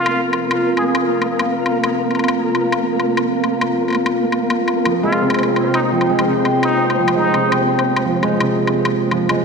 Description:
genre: half-time drum and bass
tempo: 169 BPM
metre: 4/4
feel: half-time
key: unclear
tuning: A4 = 440 Hz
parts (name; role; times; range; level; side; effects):
- trumpet with plunger mute; melody; 0.0-0.9, 5.0-7.5 s; Eb4 to Ab4; -23 LUFS; equal; diffuse ambient delay
- dark analog pad; sustained chords; 0.0-9.4 s; C4 to G5; -20 LUFS; equal; chorus, phaser
- flickering grainy texture; texture; 0.0-9.4 s; Bb3 to C5; -22 LUFS; left 1 dB; built-in reverb
- woodblock; drums; 0.1-9.4 s; none; -23 LUFS; left 3 dB; none
- felt-muted upright piano; arpeggios; 4.9-9.4 s; C3 to Ab3; -18 LUFS; right 2 dB; analog chorus, diffuse ambient delay
room: wet lush hall reverb, RT60 2.1 s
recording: dreamy mix soaked in reverb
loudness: -15 LUFS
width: side -5 dB against mid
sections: 0.0-9.4 A section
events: none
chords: 0.0 F5

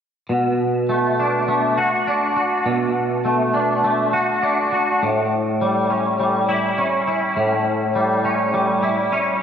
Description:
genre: rock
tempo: 102 BPM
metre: 4/4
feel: straight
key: unclear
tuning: A4 = 436 Hz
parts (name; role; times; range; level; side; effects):
- twangy electric guitar; arpeggios; 0.3-9.4 s; A2 to F#4; -17 LUFS; equal; ensemble chorus, digital delay, slapback echo
room: wet concert hall reverb, RT60 2.0 s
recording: big arena sound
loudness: -17 LUFS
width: side -8 dB against mid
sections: 0.3-9.4 A section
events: none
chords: 0.3 Bm7; 5.0 A7

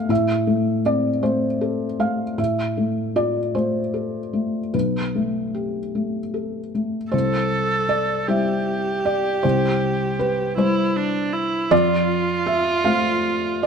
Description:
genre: neoclassical piano and strings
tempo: 52 BPM (dotted quarters)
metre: 6/8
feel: rubato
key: unclear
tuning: A4 = 443 Hz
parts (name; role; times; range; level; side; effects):
- felt-muted upright piano; accompaniment; 0.0-13.7 s; B1 to F5; -20 LUFS; left 1 dB; none
- rich viola; accompaniment; 7.1-13.7 s; D4 to A4; -22 LUFS; right 3 dB; none
room: light reverb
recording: close, detailed microphones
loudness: -19 LUFS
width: side -6 dB against mid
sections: 0.0-7.1 A section; 7.1-13.7 B section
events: none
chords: 0.1 Am; 4.7 Gadd9/B; 7.1 C; 11.7 F

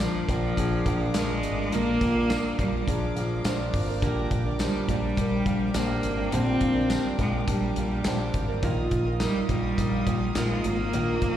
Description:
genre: piano-driven pop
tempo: 104 BPM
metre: 4/4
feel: straight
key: unclear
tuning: A4 = 440 Hz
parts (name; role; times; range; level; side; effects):
- warm cello; melody; 0.0-11.4 s; F3 to C4; -28 LUFS; left 1 dB; slapback echo
- felt-muted upright piano; accompaniment; 0.0-11.4 s; Bb2 to C5; -32 LUFS; left 1 dB; slapback echo
- dark studio string section; sustained chords; 0.0-11.4 s; Bb4 to Eb6; -38 LUFS; equal; none
- fingerpicked steel-string acoustic guitar; riff; 0.0-11.4 s; Bb2 to Bb4; -32 LUFS; right 6 dB; slapback echo
- picked electric bass with an envelope filter; bass; 0.0-11.4 s; Ab1 to Bb1; -29 LUFS; left 1 dB; none
- damped 70s drum kit; drums; 0.0-11.4 s; handclaps, hi-hat, kick drum, snare drum; -31 LUFS; equal; none
- tambourine; percussion; 0.0-10.5 s; none; -43 LUFS; left 1 dB; none
room: studio ambience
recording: live gig heard through the venue's PA, recital hall reverb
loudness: -23 LUFS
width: side -11 dB against mid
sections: 0.0-11.4 A section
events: none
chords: 0.0 Bb; 4.0 Gm; 8.6 Ebsus2

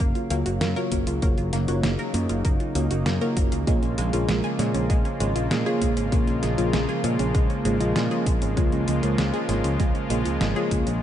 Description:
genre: synthwave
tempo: 98 BPM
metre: 4/4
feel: straight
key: Bb minor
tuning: A4 = 438 Hz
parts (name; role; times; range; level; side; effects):
- warm analog pad; sustained chords; 0.0-11.0 s; Db3 to F5; -27 LUFS; right 1 dB; chorus, sidechain pumping
- analog pluck; arpeggios; 0.0-11.0 s; Ab3 to Bb4; -30 LUFS; right 2 dB; chorus, phaser, digital delay
- mellow FM electric piano; stabs; 0.0-11.0 s; Bb3 to Eb5; -30 LUFS; left 3 dB; chorus, cassette tape, digital delay
- modern bright picked electric bass; bass; 0.0-11.0 s; Gb1 to Bb2; -26 LUFS; equal; sidechain pumping
- detuned 8-bit digital drum machine; drums; 0.0-11.0 s; hi-hat, snare drum; -31 LUFS; equal; overdrive
- electronic kick drum; drums; 0.0-10.8 s; none; -24 LUFS; equal; none
room: light reverb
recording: nothing above 10.6 kHz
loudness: -21 LUFS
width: side -10 dB against mid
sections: 0.0-11.0 A section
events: none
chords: 0.0 Gbmaj7; 3.7 Bbm7; 8.6 Db6

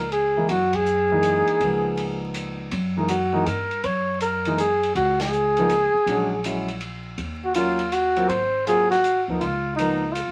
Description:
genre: jazz, small-group swing and bop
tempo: 161 BPM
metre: 3/4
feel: swing 66% on 8ths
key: Db mixolydian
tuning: A4 = 440 Hz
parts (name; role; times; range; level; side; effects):
- mellow flugelhorn; melody; 0.0-10.3 s; Eb4 to Db5; -23 LUFS; equal; none
- upright bass; bass; 0.0-10.3 s; Ab1 to G2; -33 LUFS; equal; none
- open jazz drum kit; drums; 0.1-10.3 s; hi-hat, kick drum, ride cymbal, snare drum; -37 LUFS; equal; none
- warm concert grand piano; accompaniment; 0.4-10.0 s; Fb3 to F4; -29 LUFS; equal; none
room: moderate studio ambience, RT60 0.5 s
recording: vinyl crackle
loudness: -22 LUFS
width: mono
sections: 0.0-10.3 A section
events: band accent 0.7, 5.1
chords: 0.5 Gb13; 1.6 Db13; 2.7 Gb13; 5.0 Db5; 6.1 Bb7alt; 7.2 Ebm7; 8.3 Ab13; 9.4 Db13

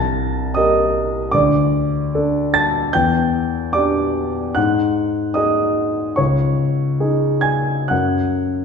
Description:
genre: classical, impressionist solo piano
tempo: 60-77 BPM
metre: 4/4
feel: rubato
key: unclear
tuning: A4 = 440 Hz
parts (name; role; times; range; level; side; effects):
- warm concert grand piano; solo; 0.0-8.6 s; C2 to A6; -16 LUFS; left 1 dB; none
room: wet recital hall reverb, RT60 1.6 s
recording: recorded in a church or concert hall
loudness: -16 LUFS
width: side -6 dB against mid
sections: 0.0-8.6 A section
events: none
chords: 0.0 Cm7; 1.3 D5; 2.9 Em7; 4.6 G#5; 6.2 C#sus2; 7.9 N.C.

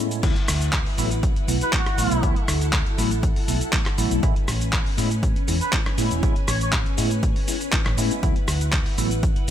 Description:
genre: filtered disco house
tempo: 120 BPM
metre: 4/4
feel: straight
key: unclear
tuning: A4 = 440 Hz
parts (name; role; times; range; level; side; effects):
- barky tine electric piano; accompaniment; 0.0-9.5 s; A2 to E4; -28 LUFS; equal; medium stereo tremolo, phaser, sidechain pumping, low-pass filter
- string machine, full ensemble; sustained chords; 0.0-9.5 s; C#4 to G#5; -31 LUFS; equal; ensemble chorus, sidechain pumping, low-pass filter
- dusty soul sampler-style drum kit; drums; 0.1-9.5 s; cabasa, crash cymbal, handclaps, hi-hat, rim click; -26 LUFS; equal; sidechain pumping on hats, small room ambience, sidechain pumping on perc, sidechain pumping on cymbals
- hollow-body short-scale fingered electric bass; bass; 0.2-9.5 s; E1 to A2; -25 LUFS; equal; sidechain pumping, low-pass filter
- electronic kick drum; drums; 0.2-9.3 s; none; -23 LUFS; equal; small room ambience
- muted trumpet section; melody; 1.6-2.4, 5.6-6.7 s; F#4 to C#5; -29 LUFS; right 2 dB; sidechain pumping, low-pass filter, tape echo
room: little or no reverb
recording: none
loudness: -19 LUFS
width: side -10 dB against mid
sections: 0.2-9.5 A section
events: drop 0.2-9.5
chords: 0.2 D69; 4.2 Amaj9; 8.2 D69

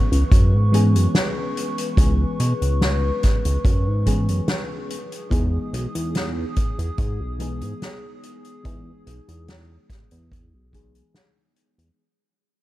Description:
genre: vaporwave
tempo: 72 BPM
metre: 4/4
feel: straight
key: unclear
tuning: A4 = 440 Hz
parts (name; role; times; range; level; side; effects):
- mellow FM electric piano; accompaniment; 0.0-12.0 s; E3 to G#4; -28 LUFS; equal; phaser, wide subtle chorus, analog delay
- warbly tape-like pad; sustained chords; 0.0-11.9 s; G#4 to D#6; -32 LUFS; left 2 dB; chorus, built-in reverb
- chorused synth bass; bass; 0.1-11.9 s; B1 to B2; -20 LUFS; equal; none
- soft-mallet drum kit; drums; 0.1-11.9 s; hi-hat, snare drum; -27 LUFS; equal; none
- kick drum; drums; 0.3-10.9 s; none; -19 LUFS; equal; none
room: small room ambience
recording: none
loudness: -18 LUFS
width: side -16 dB against mid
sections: 0.0-12.0 A section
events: fade-out 0.0-12.0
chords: 0.0 C#m7; 4.9 Emaj7

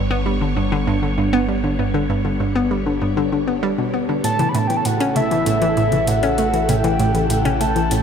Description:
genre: ambient, sequencer-driven space music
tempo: 98 BPM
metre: 4/4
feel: straight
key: G lydian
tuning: A4 = 439 Hz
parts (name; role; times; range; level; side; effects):
- phased string machine; sustained chords; 0.0-8.0 s; C#3 to C#5; -24 LUFS; equal; ensemble chorus, phaser, shimmer reverb
- hollow square pluck; riff; 0.0-8.0 s; G2 to C#4; -19 LUFS; equal; chorus, phaser, shimmer reverb, analog delay
- round analog bass; bass; 0.0-8.0 s; G1 to A1; -26 LUFS; equal; none
- soft octave-layered synth lead; melody; 4.2-8.0 s; E5 to B5; -20 LUFS; equal; chorus, shimmer reverb, analog delay
- booming analog drum machine; percussion; 4.2-8.0 s; hi-hat, toms; -26 LUFS; left 1 dB; none
room: wet huge ambient reverb, RT60 7.8 s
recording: none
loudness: -16 LUFS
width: side -7 dB against mid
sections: 0.0-8.0 A section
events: none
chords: 0.0 G; 4.2 A

